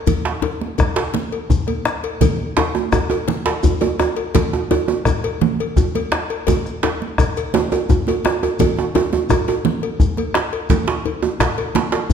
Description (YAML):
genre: west african traditional, West African drum ensemble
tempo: 113 BPM (dotted quarters)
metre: 12/8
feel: straight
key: none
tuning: none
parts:
  - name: bombo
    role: percussion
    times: 0.1-12.1 s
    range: none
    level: -21 LUFS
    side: equal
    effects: none
  - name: congas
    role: percussion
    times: 0.1-11.9 s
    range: none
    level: -24 LUFS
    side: right 7 dB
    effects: none
  - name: cowbell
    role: percussion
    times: 0.1-12.1 s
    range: none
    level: -26 LUFS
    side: left 7 dB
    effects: none
  - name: djembe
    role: percussion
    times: 0.1-12.1 s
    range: none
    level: -24 LUFS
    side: left 7 dB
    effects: none
  - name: shekere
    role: percussion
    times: 0.1-12.1 s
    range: none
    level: -28 LUFS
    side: left 3 dB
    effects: none
  - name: djembe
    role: percussion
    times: 0.3-12.1 s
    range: none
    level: -20 LUFS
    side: right 7 dB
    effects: none
room: wet recital hall reverb, RT60 1.5 s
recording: none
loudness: -16 LUFS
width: side -7 dB against mid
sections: 0.1-12.1 A section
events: none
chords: none